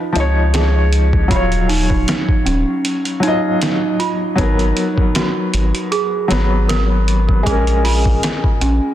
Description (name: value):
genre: trip hop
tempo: 78 BPM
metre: 4/4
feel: swing 54% on 16ths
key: Eb minor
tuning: A4 = 439 Hz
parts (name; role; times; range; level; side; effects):
- felt-muted upright piano; accompaniment; 0.0-8.9 s; F3 to Eb5; -19 LUFS; left 2 dB; tremolo, tape echo
- celesta; arpeggios; 0.0-8.9 s; Db4 to Bb4; -21 LUFS; right 4 dB; vintage 12-bit sampler grit, tape echo
- round analog bass; bass; 0.2-8.8 s; Eb1 to Db2; -16 LUFS; equal; none
- trip hop sampler-style drum kit; drums; 0.2-8.8 s; hi-hat, kick drum, snare drum; -19 LUFS; equal; overdrive, vintage 12-bit sampler grit
room: light reverb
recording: dense, heavily limited modern master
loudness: -14 LUFS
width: side -12 dB against mid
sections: 0.0-8.9 A section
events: none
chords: 0.0 Db9; 1.3 Ebm9; 4.4 Abm9; 7.5 Bbm7